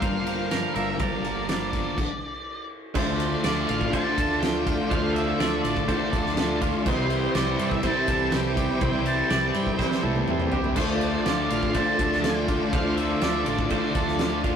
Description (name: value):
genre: rock, shoegaze and dream pop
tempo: 123 BPM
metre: 4/4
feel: straight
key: D minor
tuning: A4 = 440 Hz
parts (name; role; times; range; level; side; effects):
- octave-fuzz lead guitar; melody; 0.0-14.4 s; C5 to A5; -31 LUFS; equal; distortion
- warm analog pad; sustained chords; 0.0-14.6 s; E4 to D6; -31 LUFS; equal; chorus, tremolo
- twangy electric guitar; arpeggios; 0.0-14.6 s; F4 to D5; -33 LUFS; right 4 dB; none
- direct-recorded clean electric guitar; riff; 0.0-14.6 s; G2 to Bb4; -30 LUFS; right 6 dB; none
- thick fuzz guitar; riff; 0.0-14.6 s; G2 to D4; -29 LUFS; left 5 dB; distortion
- fingered electric bass; bass; 0.0-14.5 s; G1 to G2; -32 LUFS; equal; none
- loose indie drum kit; drums; 0.0-14.6 s; crash cymbal, kick drum, ride cymbal, snare drum, toms; -28 LUFS; equal; none
room: moderate stone room reverb, RT60 1.1 s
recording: rough rehearsal-room recording, warm saturation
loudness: -22 LUFS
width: side -8 dB against mid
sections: 0.0-3.0 A section; 3.0-14.6 B section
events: stop 2.0-3.0; drum fill 9.8-10.8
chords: 0.0 Gm7; 3.0 Dm; 6.9 C; 10.8 Dm